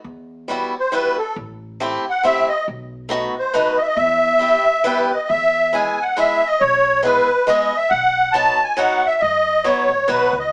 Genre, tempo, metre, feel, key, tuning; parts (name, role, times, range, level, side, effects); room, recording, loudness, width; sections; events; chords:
musette waltz; 138 BPM; 3/4; swing 54% on 8ths; E harmonic minor, E major from 5.3 s; A4 = 440 Hz
upright bass; bass; 0.0-10.5 s; A1 to F#2; -38 LUFS; equal
picked swing-style acoustic guitar; accompaniment; 0.5-10.3 s; F#3 to G#4; -24 LUFS; equal
musette accordion; melody; 0.8-10.5 s; A4 to A5; -18 LUFS; equal
wet studio reverb, RT60 0.7 s; band playing live in one room, small speaker sound; -18 LUFS; mono
0.0-5.3 A section; 5.3-10.5 B section
0.0 Emadd9; 1.4 Am7; 2.7 B7; 4.0 Em; 5.3 E; 7.9 B